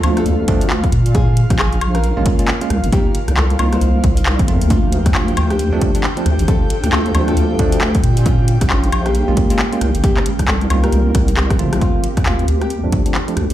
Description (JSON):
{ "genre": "UK garage, two-step garage", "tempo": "135 BPM", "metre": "4/4", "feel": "swing 60% on 16ths", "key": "D phrygian", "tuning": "A4 = 441 Hz", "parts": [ { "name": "airy breathy pad", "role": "sustained chords", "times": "0.0-11.8 s", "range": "F4 to G5", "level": "-29 LUFS", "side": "left 1 dB", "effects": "chorus, vintage 12-bit sampler grit, sidechain pumping" }, { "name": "bell-like tine electric piano", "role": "stabs", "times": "0.0-13.4 s", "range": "F3 to G4", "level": "-22 LUFS", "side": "moving between left 1 dB and right 5 dB", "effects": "auto-pan, low-pass filter, dub echo" }, { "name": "deep soft wobble bass", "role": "bass", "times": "0.0-13.5 s", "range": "G1 to Bb2", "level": "-16 LUFS", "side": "equal", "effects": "chorus, sidechain pumping" }, { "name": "garage drum kit", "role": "drums", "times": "0.0-13.5 s", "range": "handclaps, hi-hat, rim click, woodblock", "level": "-22 LUFS", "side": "left 1 dB", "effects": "none" }, { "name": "granular cloud pad", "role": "texture", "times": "0.0-13.5 s", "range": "Ab3 to A5", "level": "-27 LUFS", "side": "right 1 dB", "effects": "built-in reverb, sidechain pumping" }, { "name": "nylon-string guitar", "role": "melody", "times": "0.2-13.5 s", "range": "Bb3 to C5", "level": "-25 LUFS", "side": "equal", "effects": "dub echo" }, { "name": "electronic kick drum", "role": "drums", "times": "0.5-13.0 s", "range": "none", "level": "-17 LUFS", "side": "equal", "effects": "overdrive" } ], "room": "little or no reverb", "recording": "played on a big sound system in a bare room, large studio reverb", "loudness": "-13 LUFS", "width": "side -13 dB against mid", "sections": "0.0-11.8 A section; 11.8-13.5 B section", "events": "drop 0.0-11.8; drum fill 11.1-11.8; filter sweep on tine electric piano 11.8-13.5", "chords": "0.0 Dm7; 0.9 Bbm7; 2.7 Cm7; 4.7 Dm7; 8.0 Bbm7; 9.8 Cm7; 11.8 Dm7" }